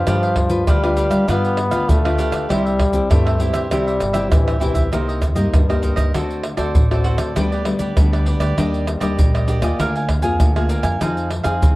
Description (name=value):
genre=samba and choro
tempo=99 BPM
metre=4/4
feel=straight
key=C major, C minor from 4.9 s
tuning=A4 = 440 Hz
part: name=clear trombone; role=second line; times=0.0-4.9 s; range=E3 to B3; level=-21 LUFS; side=left 2 dB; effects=none
part: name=cavaquinho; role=accompaniment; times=0.0-11.8 s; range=D4 to Ab5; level=-26 LUFS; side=right 4 dB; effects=none
part: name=nylon-string guitar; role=accompaniment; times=0.0-11.8 s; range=G2 to B4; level=-23 LUFS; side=left 2 dB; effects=none
part: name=upright bass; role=bass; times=0.0-11.8 s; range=G1 to G3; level=-22 LUFS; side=equal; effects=none
part: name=tube shaker, surdo, pandeiro and tamborim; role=percussion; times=0.1-11.8 s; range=none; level=-18 LUFS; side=equal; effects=none
room=moderate spring reverb, RT60 1.4 s, studio reverb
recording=worn, warbling old tape, cassette tape, warbly pitch drift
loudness=-15 LUFS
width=side -19 dB against mid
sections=0.0-4.9 A section; 4.9-11.8 B section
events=drum fill 4.3-4.9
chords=0.1 G7; 2.5 C; 4.9 Cm7; 6.1 D7; 7.4 G/D; 8.6 Ebmaj7; 9.8 Bb7/D; 11.0 Fm7